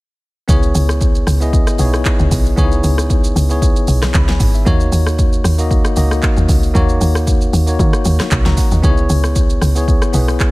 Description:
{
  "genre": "amapiano",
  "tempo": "115 BPM",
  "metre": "4/4",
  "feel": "swing 55% on 16ths",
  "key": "C# dorian",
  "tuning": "A4 = 440 Hz",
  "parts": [
    { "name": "bell-like tine electric piano", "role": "accompaniment", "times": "0.5-10.5 s", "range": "A#3 to C#6", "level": "-20 LUFS", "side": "left 2 dB", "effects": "medium stereo tremolo" },
    { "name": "woody log drum bass", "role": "bass", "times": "0.5-10.4 s", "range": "G#1 to D#3", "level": "-15 LUFS", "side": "equal", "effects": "none" },
    { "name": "deep house drum kit", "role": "drums", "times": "0.5-10.5 s", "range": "handclaps, hi-hat, kick drum, rim click, shaker, snare drum", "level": "-15 LUFS", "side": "equal", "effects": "none" }
  ],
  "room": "little or no reverb",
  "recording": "none",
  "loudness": "-12 LUFS",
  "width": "side -21 dB against mid",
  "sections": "0.5-10.5 A section",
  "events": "drop 0.5-10.5",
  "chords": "0.5 C#m7; 4.7 D#m7; 8.8 C#m7",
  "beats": "| 0.49 1.01 1.53 2.05 | 2.58 3.10 3.62 4.14 | 4.66 5.18 5.71 6.23 | 6.75 7.27 7.79 8.31 | 8.84 9.36 9.88 10.40"
}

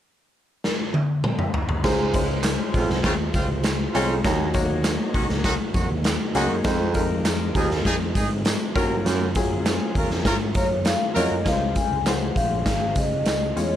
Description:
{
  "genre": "uptempo 1960s-style soul",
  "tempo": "100 BPM",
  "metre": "4/4",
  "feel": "straight",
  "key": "Db major",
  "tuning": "A4 = 435 Hz",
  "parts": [
    { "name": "raw garage drum kit", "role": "drums", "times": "0.6-13.7 s", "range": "crash cymbal, hi-hat, kick drum, snare drum, toms", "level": "-24 LUFS", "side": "equal", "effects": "none" },
    { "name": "clear upright piano", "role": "accompaniment", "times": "1.8-13.8 s", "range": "F3 to Db5", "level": "-28 LUFS", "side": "left 4 dB", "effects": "none" },
    { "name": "percussive tonewheel organ", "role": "sustained chords", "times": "1.8-13.8 s", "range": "Gb3 to C5", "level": "-34 LUFS", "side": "right 2 dB", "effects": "none" },
    { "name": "warm baritone saxophone", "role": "riff", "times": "1.8-11.4 s", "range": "Eb2 to Ab2", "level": "-28 LUFS", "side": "right 5 dB", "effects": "none" },
    { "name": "fingered electric bass", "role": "bass", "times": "1.8-13.8 s", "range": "Ab1 to Db3", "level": "-28 LUFS", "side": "equal", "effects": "none" },
    { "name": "tambourine and handclaps", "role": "percussion", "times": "1.9-13.7 s", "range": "none", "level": "-35 LUFS", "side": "right 3 dB", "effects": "none" },
    { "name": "clear horn section", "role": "second line", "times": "2.7-11.3 s", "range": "Db3 to Bb4", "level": "-28 LUFS", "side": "equal", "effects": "none" },
    { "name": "vibraphone with soft mallets", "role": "melody", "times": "10.6-13.8 s", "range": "Db5 to Ab5", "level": "-25 LUFS", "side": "left 2 dB", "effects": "none" }
  ],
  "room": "light reverb",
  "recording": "none",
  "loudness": "-20 LUFS",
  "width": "side -11 dB against mid",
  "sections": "0.0-1.8 A section; 1.8-11.5 B section; 11.5-13.8 C section",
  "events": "drum fill 0.6-1.8",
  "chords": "0.0 N.C.; 1.8 Dbmaj7; 4.2 Ebm7; 6.7 Fm7; 8.8 Gbmaj7; 11.5 Dbmaj7",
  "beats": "0.04 0.64 1.24 | 1.84 2.44 3.04 3.65 | 4.25 4.85 5.45 6.05 | 6.65 7.25 7.85 8.45 | 9.05 9.65 10.26 10.86 | 11.46 12.06 12.66 13.26"
}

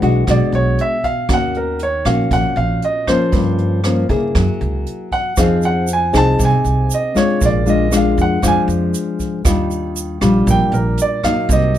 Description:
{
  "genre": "bossa nova",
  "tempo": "118 BPM",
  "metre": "4/4",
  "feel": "straight",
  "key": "unclear",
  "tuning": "A4 = 439 Hz",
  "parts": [
    { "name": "nylon-string guitar", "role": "accompaniment", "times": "0.0-11.8 s", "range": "G2 to Ab4", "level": "-18 LUFS", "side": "left 2 dB", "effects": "none" },
    { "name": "upright bass", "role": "bass", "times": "0.0-11.8 s", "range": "Bb1 to Db3", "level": "-18 LUFS", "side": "right 1 dB", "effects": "none" },
    { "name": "jazz brush drum kit", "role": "drums", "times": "0.0-11.8 s", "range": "hi-hat, kick drum, rim click", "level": "-22 LUFS", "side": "right 1 dB", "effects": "none" },
    { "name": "warm baby grand piano", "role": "melody", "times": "0.3-11.8 s", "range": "Bb4 to A5", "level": "-18 LUFS", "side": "right 2 dB", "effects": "none" },
    { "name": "egg shaker", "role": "percussion", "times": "5.4-11.8 s", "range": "none", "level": "-29 LUFS", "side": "right 10 dB", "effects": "none" }
  ],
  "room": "light reverb",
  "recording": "none",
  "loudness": "-14 LUFS",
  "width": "side -11 dB against mid",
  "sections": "0.0-11.8 A section",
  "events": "grand piano solo 0.0-11.8",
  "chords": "0.0 E9; 1.3 Ebm7; 3.3 Gm7b5; 4.4 Gb9; 5.4 Fm7; 7.4 Bb7; 9.5 Ebmaj9",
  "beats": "0.27 0.78 | 1.29 1.80 2.31 2.82 | 3.33 3.84 4.35 4.86 | 5.37 5.88 6.39 6.90 | 7.41 7.92 8.43 8.94 | 9.45 9.96 10.47 10.98 | 11.49"
}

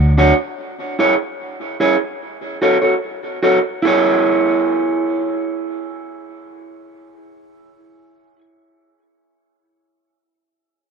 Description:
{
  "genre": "reggae",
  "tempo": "74 BPM",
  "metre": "4/4",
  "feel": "straight",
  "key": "unclear",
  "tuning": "A4 = 440 Hz",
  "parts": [
    { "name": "electric guitar at the edge of break-up", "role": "accompaniment", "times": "0.2-8.4 s", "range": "D4 to C#5", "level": "-16 LUFS", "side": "right 2 dB", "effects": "tape echo" }
  ],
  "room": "light reverb, small room ambience",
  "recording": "dark, warm production",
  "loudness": "-14 LUFS",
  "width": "side -5 dB against mid",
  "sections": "0.0-3.8 A section; 3.8-7.1 B section",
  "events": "none",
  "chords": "0.0 Dmaj7; 0.6 E6; 2.2 F#m; 3.8 E6",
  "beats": "| 0.59 1.40 2.21 3.03 | 3.84 4.65 5.46 6.28"
}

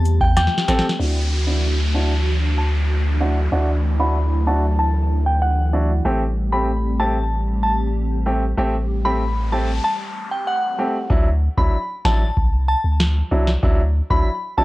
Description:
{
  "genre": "dancehall",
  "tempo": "95 BPM",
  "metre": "4/4",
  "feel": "straight",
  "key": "unclear",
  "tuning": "A4 = 440 Hz",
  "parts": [
    { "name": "hollow soft pad", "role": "sustained chords", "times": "0.0-11.1 s", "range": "E3 to G4", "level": "-28 LUFS", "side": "right 1 dB", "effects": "ensemble chorus, sidechain pumping, low-pass filter" },
    { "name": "punchy sub bass", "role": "bass", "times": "0.0-14.6 s", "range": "A1 to E2", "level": "-19 LUFS", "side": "equal", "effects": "none" },
    { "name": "booming analog drum machine", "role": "drums", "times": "0.1-1.0, 11.1-14.3 s", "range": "hi-hat, kick drum, snare drum", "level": "-19 LUFS", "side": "equal", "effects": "overdrive" },
    { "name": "cabasa and woodblock", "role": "percussion", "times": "0.1-0.8 s", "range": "none", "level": "-30 LUFS", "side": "left 3 dB", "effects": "none" },
    { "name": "glassy synth bell", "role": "melody", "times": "0.2-14.6 s", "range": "F#5 to B5", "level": "-24 LUFS", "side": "equal", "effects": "chorus, tremolo, low-pass filter, analog delay" },
    { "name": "clear grand piano", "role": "accompaniment", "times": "0.7-14.6 s", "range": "F#3 to A4", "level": "-24 LUFS", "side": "right 1 dB", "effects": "sidechain pumping, low-pass filter" },
    { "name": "downlifter and noise sweep", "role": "sound effects", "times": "1.0-11.1 s", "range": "none", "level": "-31 LUFS", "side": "equal", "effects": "none" }
  ],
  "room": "digital ambience",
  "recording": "dry, gritty hardware recording, cassette tape",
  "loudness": "-17 LUFS",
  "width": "side -18 dB against mid",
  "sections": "1.0-11.1 A section; 11.1-14.6 B section",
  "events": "drum fill 0.4-1.0; filter sweep 1.0-11.1; noise sweep 8.9-11.1; hi-hats muted 11.1-14.6",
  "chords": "0.0 Am7; 1.0 Dadd9; 6.1 Am7; 11.1 Dadd9",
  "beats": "0.37 | 1.00 1.63 2.26 2.89 | 3.52 4.16 4.79 5.42 | 6.05 6.68 7.31 7.95 | 8.58 9.21 9.84 10.47 | 11.10 11.73 12.37 13.00 | 13.63 14.26"
}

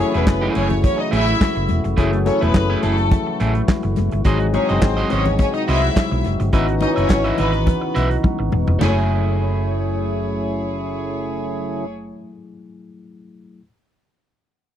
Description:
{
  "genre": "disco",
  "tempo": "105 BPM",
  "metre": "4/4",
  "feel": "straight",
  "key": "F# dorian",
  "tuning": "A4 = 442 Hz",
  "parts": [
    { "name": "warm chamber string section", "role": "second line", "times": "0.0-11.9 s", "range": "A3 to E5", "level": "-24 LUFS", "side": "left 1 dB", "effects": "none" },
    { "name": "electric guitar at the edge of break-up", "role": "accompaniment", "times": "0.0-12.3 s", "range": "A3 to E5", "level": "-27 LUFS", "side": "right 5 dB", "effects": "none" },
    { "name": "tine electric piano", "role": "accompaniment", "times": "0.0-13.6 s", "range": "D#3 to A4", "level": "-25 LUFS", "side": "left 6 dB", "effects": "overdrive" },
    { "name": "percussive tonewheel organ", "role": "sustained chords", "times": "0.0-11.8 s", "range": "B#2 to G#4", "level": "-27 LUFS", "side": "right 3 dB", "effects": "overdrive, lush chorus" },
    { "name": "hollow-body short-scale fingered electric bass", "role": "bass", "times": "0.1-12.1 s", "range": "E1 to B#1", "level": "-21 LUFS", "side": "equal", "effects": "none" },
    { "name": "warm soul drum kit", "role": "drums", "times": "0.1-9.0 s", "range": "crash cymbal, handclaps, hi-hat, kick drum, snare drum, toms", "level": "-18 LUFS", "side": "equal", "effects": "none" },
    { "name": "congas", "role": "percussion", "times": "0.3-9.1 s", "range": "none", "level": "-27 LUFS", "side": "left 6 dB", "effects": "none" }
  ],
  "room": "little or no reverb",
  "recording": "dry, close 1970s-style studio recording",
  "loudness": "-16 LUFS",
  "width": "side -10 dB against mid",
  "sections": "0.0-8.8 A section; 8.8-11.1 B section",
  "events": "drum fill 8.2-8.8",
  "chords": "0.0 F#m9; 4.3 G#7; 6.5 C#m11; 8.8 F#m9",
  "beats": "0.27 0.84 1.41 | 1.98 2.54 3.11 3.68 | 4.25 4.82 5.39 5.96 | 6.53 7.10 7.67 8.24 | 8.81 9.38 9.95 10.52"
}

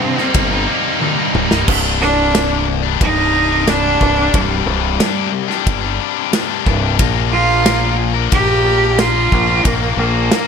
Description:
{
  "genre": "quiet-loud alternative rock",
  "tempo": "90 BPM",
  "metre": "4/4",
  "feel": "straight",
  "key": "C minor",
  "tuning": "A4 = 439 Hz",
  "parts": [
    { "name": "rich cello", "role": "melody", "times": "0.0-10.5 s", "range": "G3 to G4", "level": "-17 LUFS", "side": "right 4 dB", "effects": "slapback echo" },
    { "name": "heavy high-gain guitar", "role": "riff", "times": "0.0-10.5 s", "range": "C2 to Bb4", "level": "-18 LUFS", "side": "left 19 dB", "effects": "distortion" },
    { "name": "scooped high-gain guitar", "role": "riff", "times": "0.0-1.7 s", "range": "C2 to Eb4", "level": "-19 LUFS", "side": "right 13 dB", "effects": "distortion" },
    { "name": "loose indie drum kit", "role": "drums", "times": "0.2-10.5 s", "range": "crash cymbal, kick drum, ride cymbal, snare drum, toms", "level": "-19 LUFS", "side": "equal", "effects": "none" },
    { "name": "growling fingered electric bass", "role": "bass", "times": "0.3-10.3 s", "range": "C1 to Bb1", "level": "-19 LUFS", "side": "equal", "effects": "overdrive" }
  ],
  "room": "light reverb",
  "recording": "none",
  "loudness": "-13 LUFS",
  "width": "side -6 dB against mid",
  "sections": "0.0-1.7 A section; 1.7-10.5 A section",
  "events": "drum fill 1.0-1.7",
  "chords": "0.0 Cm7; 1.7 Csus2; 7.0 Bb",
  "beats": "0.35 1.01 | 1.68 2.34 3.01 3.67 | 4.34 5.00 5.67 6.33 | 7.00 7.66 8.32 8.99 | 9.65 10.31"
}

